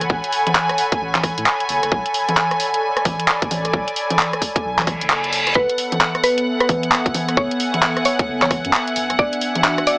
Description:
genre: UK garage, two-step garage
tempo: 132 BPM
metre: 4/4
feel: swing 62% on 16ths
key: F# minor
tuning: A4 = 441 Hz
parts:
  - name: clear studio violin section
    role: sustained chords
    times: 0.0-10.0 s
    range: F#5 to G#5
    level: -24 LUFS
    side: equal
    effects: vintage 12-bit sampler grit, sidechain pumping
  - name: soft dub sub bass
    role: bass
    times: 0.0-9.3 s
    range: D1 to A2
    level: -33 LUFS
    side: equal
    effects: none
  - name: garage drum kit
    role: drums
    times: 0.0-10.0 s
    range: congas, handclaps, hi-hat, rim click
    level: -19 LUFS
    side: equal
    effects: overdrive
  - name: airy breathy pad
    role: texture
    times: 0.0-10.0 s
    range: B3 to B5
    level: -23 LUFS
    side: equal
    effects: chorus, sidechain pumping
  - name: electronic kick drum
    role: drums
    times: 0.1-9.3 s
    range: none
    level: -20 LUFS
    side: equal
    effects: overdrive
  - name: reverse cymbal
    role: sound effects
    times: 4.9-5.6 s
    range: none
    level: -21 LUFS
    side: equal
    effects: none
  - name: mallet-like synth pluck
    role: melody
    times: 5.6-10.0 s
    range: B4 to D5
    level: -21 LUFS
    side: equal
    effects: chorus, dub echo
room: moderate studio reverb, RT60 0.5 s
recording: small speaker sound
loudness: -16 LUFS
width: side -27 dB against mid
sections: 0.0-10.0 A section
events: reverse cymbal 4.9-5.6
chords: 0.0 A69; 1.9 Bm9; 5.6 F#m11; 9.0 E9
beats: | 0.10 0.55 1.01 1.46 | 1.92 2.37 2.83 3.28 | 3.74 4.19 4.64 5.10 | 5.55 6.01 6.46 6.92 | 7.37 7.83 8.28 8.74 | 9.19 9.64

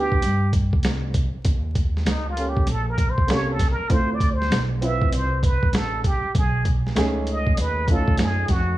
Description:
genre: hip hop, jazz-hop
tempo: 98 BPM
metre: 4/4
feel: swing 65% on 16ths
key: unclear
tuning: A4 = 440 Hz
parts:
  - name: trumpet with plunger mute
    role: melody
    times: 0.0-8.8 s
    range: D#4 to E5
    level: -26 LUFS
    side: right 1 dB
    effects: none
  - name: dark upright piano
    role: accompaniment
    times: 0.0-8.8 s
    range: A3 to B4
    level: -28 LUFS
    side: right 1 dB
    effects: none
  - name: upright bass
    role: bass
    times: 0.0-8.8 s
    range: A1 to G2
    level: -24 LUFS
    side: equal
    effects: none
  - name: dusty soul sampler-style drum kit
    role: drums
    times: 0.1-8.7 s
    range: hi-hat, kick drum, snare drum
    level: -22 LUFS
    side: equal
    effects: none
room: little or no reverb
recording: vinyl crackle, small room reverb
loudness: -19 LUFS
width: side -15 dB against mid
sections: 0.0-8.8 A section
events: muted trumpet solo 0.0-8.8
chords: 0.0 Em7 (rootless); 1.5 D#7#11; 3.9 Dm9; 6.3 B13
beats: 0.23 0.84 | 1.45 2.06 2.68 3.29 | 3.90 4.51 5.12 5.74 | 6.35 6.96 7.57 8.19

